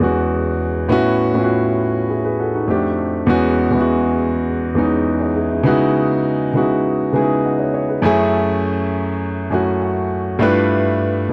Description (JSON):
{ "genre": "soul", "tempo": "101 BPM", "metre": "4/4", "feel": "straight", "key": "unclear", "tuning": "A4 = 440 Hz", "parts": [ { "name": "warm concert grand piano", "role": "solo", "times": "0.0-11.3 s", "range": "E2 to G#5", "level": "-18 LUFS", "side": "equal", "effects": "none" } ], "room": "moderate booth ambience, RT60 0.2 s", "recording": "dry, close 1970s-style studio recording", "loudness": "-18 LUFS", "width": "mono", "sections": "0.0-5.7 A section; 5.7-11.3 B section", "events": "grand piano fill 9.2-10.4", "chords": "0.0 E69; 0.9 A6; 2.7 F69; 3.3 E69; 5.7 C#m11; 8.0 F#m7; 10.4 G13", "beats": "0.31 | 0.91 1.50 2.09 2.69 | 3.28 3.87 4.47 5.06 | 5.66 6.25 6.84 7.44 | 8.03 8.63 9.22 9.81 | 10.41 11.00" }